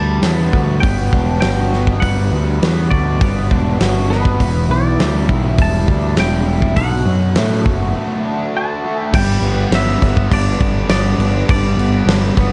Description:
rock, shoegaze and dream pop; 101 BPM; 4/4; straight; G major; A4 = 440 Hz
twangy electric guitar; melody; 0.0-12.5 s; B4 to A5; -26 LUFS; equal; slapback echo
fuzz guitar; riff; 0.0-12.5 s; E2 to F#4; -22 LUFS; equal; distortion, subtle chorus
growling picked electric bass; bass; 0.0-12.5 s; E1 to A2; -19 LUFS; equal; overdrive
big rock drum kit; drums; 0.2-12.5 s; crash cymbal, hi-hat, kick drum, snare drum; -20 LUFS; equal
light reverb, small room ambience; dark, warm production, nothing above 10.4 kHz; -16 LUFS; mono
0.0-9.1 A section; 9.1-12.5 B section
break 8.0-9.1
0.0 Gmaj7; 4.4 Em7; 6.8 Bm7; 9.1 G

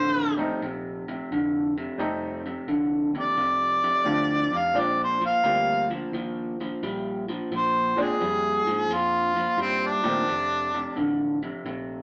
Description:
blues; 87 BPM; 4/4; swing 67% on 8ths; F mixolydian; A4 = 440 Hz
mellow harmonica; melody; 0.0-11.2 s; C4 to F5; -25 LUFS; equal; overdrive
electric guitar through a small old amp; riff; 0.0-12.0 s; F2 to G3; -31 LUFS; equal
vintage muted fingered electric bass; bass; 0.0-12.0 s; F1 to Bb2; -42 LUFS; equal
bright upright piano; accompaniment; 0.4-10.3 s; Eb3 to F4; -33 LUFS; equal
light reverb; band playing live in one room, small speaker sound; -26 LUFS; mono
0.0-12.0 A section
0.0 F7; 4.8 Bb7; 10.3 F

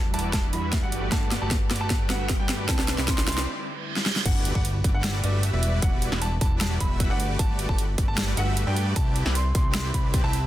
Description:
future bass; 153 BPM; 4/4; half-time; A4 = 440 Hz
warm grand piano; melody; 0.0-10.4 s; D5 to C6; -34 LUFS; right 1 dB; sidechain pumping, low-pass filter, tape echo
soft round pluck; accompaniment; 0.0-3.5 s; G3 to F#5; -38 LUFS; right 2 dB; wide subtle chorus, sidechain pumping, dub echo
shimmering ambient pad; sustained chords; 0.1-4.2 s; D3 to F#5; -40 LUFS; right 2 dB
fat analog bass; bass; 0.0-10.5 s; E1 to G2; -27 LUFS; equal; sidechain pumping
dense compressed supersaw; riff; 0.1-10.4 s; G3 to E5; -32 LUFS; equal; sidechain pumping, low-pass filter
big-room dance drum kit; drums; 0.1-10.4 s; crash cymbal, hi-hat, snare drum; -28 LUFS; equal
electronic kick drum; drums; 0.3-10.2 s; -25 LUFS; equal
reverse cymbal and sub drop; sound effects; 3.7-5.8 s; -34 LUFS; right 3 dB
light reverb; dense, heavily limited modern master; -22 LUFS; side -14 dB against mid
0.0-4.3 A section; 4.3-10.5 B section
build-up 0.0-4.3; drum fill 0.0-3.5, 4.0; filter sweep on grand piano 0.0-4.3; break 3.5-4.3; reverse cymbal 3.7-4.3; drop 4.3-10.5; impact 4.3-5.8
0.0 Em9; 0.9 Gmaj9; 2.7 Cmaj9; 4.3 Em9; 7.2 Gmaj9; 9.0 Cmaj9

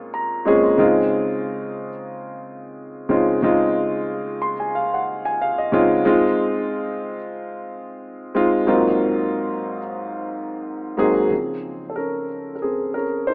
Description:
soul; 91 BPM; 4/4; swing 54% on 16ths; Db major; A4 = 440 Hz
dark baby grand piano; solo; 0.0-13.3 s; Ab2 to C6; -19 LUFS; equal
moderate lush hall reverb, RT60 3.2 s; rough home demo mix, AM radio sound; -18 LUFS; side -32 dB against mid
0.0-11.3 A section; 11.3-13.3 B section
grand piano fill 0.0-0.8, 4.1-6.0; grand piano solo 11.3-13.3
0.0 Bbm9; 0.8 Dbmaj9; 6.0 Fm7; 8.7 Ab13; 11.3 Dbmaj7

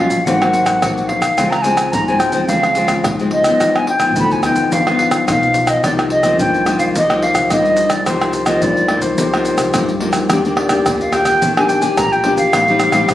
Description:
samba and choro; 108 BPM; 4/4; straight; C minor; A4 = 441 Hz
silver concert flute; melody; 0.0-13.1 s; C5 to B5; -16 LUFS; equal
nylon-string guitar; accompaniment; 0.0-13.1 s; G2 to G4; -18 LUFS; left 2 dB
deep dub fingered electric bass; bass; 0.0-13.1 s; G1 to G2; -25 LUFS; right 1 dB
maracas, surdo, pandeiro and tamborim; percussion; 0.1-13.1 s; -19 LUFS; right 1 dB
moderate large studio reverb, RT60 1.2 s; recorded on a phone in the room, club reverb; -12 LUFS; side -13 dB against mid
0.0-10.3 A section; 10.3-13.1 B section
0.3 Ab9; 1.4 Dbmaj7; 3.6 G7b13; 5.8 Cm7; 10.3 Ebmaj7; 12.5 Am7b5

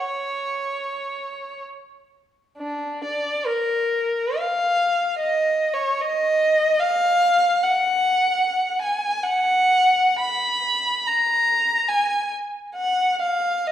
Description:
classical, free, expressive piece for unaccompanied violin; free time; Eb minor; A4 = 440 Hz
rich violin; solo; 0.0-13.7 s; D4 to Cb6; -19 LUFS; equal
wet recital hall reverb, RT60 1.4 s; heard from further back in the room; -19 LUFS; side -11 dB against mid
0.0-13.7 A section

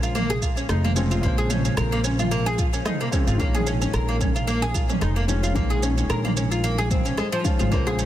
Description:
organic downtempo; 111 BPM; 4/4; swing 55% on 16ths; Bb minor; A4 = 439 Hz
felt-muted upright piano; accompaniment; 0.0-8.1 s; Db3 to C5; -29 LUFS; left 3 dB; sidechain pumping, ping-pong delay
oud; arpeggios; 0.0-8.1 s; F3 to Bb4; -26 LUFS; equal; ping-pong delay
upright bass; bass; 0.0-8.1 s; F1 to Bb1; -24 LUFS; equal; sidechain pumping
organic electronic drum kit; drums; 0.0-8.1 s; rim click, shaker, toms; -29 LUFS; right 1 dB; soft clipping on snare
electronic kick drum; drums; 0.4-7.8 s; -24 LUFS; equal
darbuka; percussion; 7.9-8.0 s; -36 LUFS; left 2 dB
light reverb, small room ambience; dense, heavily limited modern master; -20 LUFS; side -12 dB against mid
0.0-8.1 A section
0.0 Bbm7

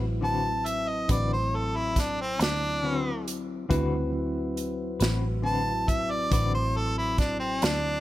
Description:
slow blues; 46 BPM (dotted quarters); 12/8; straight; A4 = 441 Hz
semi-hollow electric guitar; accompaniment; 0.0-6.6 s; D3 to B4; -34 LUFS; left 6 dB; tremolo
tine electric piano; accompaniment; 0.0-8.0 s; C4 to B4; -37 LUFS; right 2 dB; fast stereo tremolo
mellow tonewheel organ; sustained chords; 0.0-8.0 s; C#3 to E4; -34 LUFS; left 2 dB; slow rotary speaker
vintage muted fingered electric bass; bass; 0.0-8.0 s; A1 to D2; -30 LUFS; equal
clear harmonica; melody; 0.2-8.0 s; C4 to A5; -28 LUFS; equal; overdrive
natural country drum kit; drums; 0.7-7.8 s; hi-hat, kick drum, snare drum; -28 LUFS; right 1 dB
light reverb, small room ambience; -25 LUFS; side -15 dB against mid
0.0-8.0 A section
harmonica solo 0.0-8.0
0.0 D13

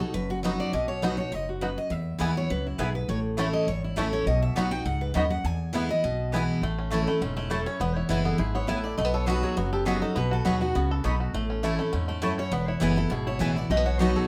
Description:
bluegrass; 204 BPM; 4/4; straight; E major; A4 = 440 Hz
picked steel-string acoustic guitar; melody; 0.0-14.3 s; E4 to G#5; -34 LUFS; equal; plate reverb
picked steel-string acoustic guitar; accompaniment; 0.0-14.3 s; E2 to F#4; -31 LUFS; equal
upright bass; bass; 0.1-14.1 s; E1 to E2; -32 LUFS; equal
bluegrass banjo; melody; 0.4-14.3 s; F#3 to A4; -36 LUFS; equal
mandolin; stabs; 2.2-14.1 s; A3 to B5; -35 LUFS; equal
moderate studio reverb, RT60 0.5 s; -27 LUFS; mono
0.0-6.6 A section; 6.6-14.3 B section
0.0 B; 1.9 E; 3.1 A; 4.3 B; 5.4 E; 6.6 A; 7.8 E; 9.0 B; 11.3 A; 12.5 E; 13.7 B

